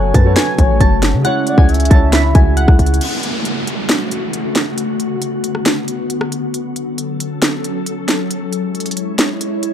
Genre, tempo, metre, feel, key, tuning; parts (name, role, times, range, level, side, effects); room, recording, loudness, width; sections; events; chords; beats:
hip hop, trap; 136 BPM; 4/4; half-time; F# minor; A4 = 440 Hz
glassy digital keys; melody; 0.0-3.0 s; F#5 to B5; -21 LUFS; equal; chorus, low-pass filter, tape echo
gliding portamento lead; second line; 0.0-3.0 s; B4 to E5; -24 LUFS; left 4 dB; chorus, tape echo
dark concert grand piano; accompaniment; 0.0-3.0 s; C#3 to C#5; -21 LUFS; right 6 dB; low-pass filter
glassy FM pad; sustained chords; 0.0-9.7 s; C#3 to C#5; -21 LUFS; left 2 dB; ensemble chorus, built-in reverb
hard-hitting 808-style bass; bass; 0.0-3.0 s; F#1 to C#3; -13 LUFS; equal
trap drum kit; drums; 0.1-9.7 s; crash cymbal, handclaps, hi-hat, kick drum, rim click, snare drum; -15 LUFS; equal
downlifter; sound effects; 3.0-6.5 s; -25 LUFS; right 2 dB
little or no reverb; dark, warm production; -13 LUFS; side -9 dB against mid
0.0-3.0 A section; 3.0-9.7 B section
break 3.0-9.7
0.0 F#m; 1.2 C#m; 3.0 F#m; 4.8 Bm; 6.5 F#m; 8.3 C#m
0.36 0.81 | 1.25 1.69 2.13 2.57 | 3.01 3.45 3.89 4.33 | 4.78 5.22 5.66 6.10 | 6.54 6.98 7.42 7.86 | 8.30 8.75 9.19 9.63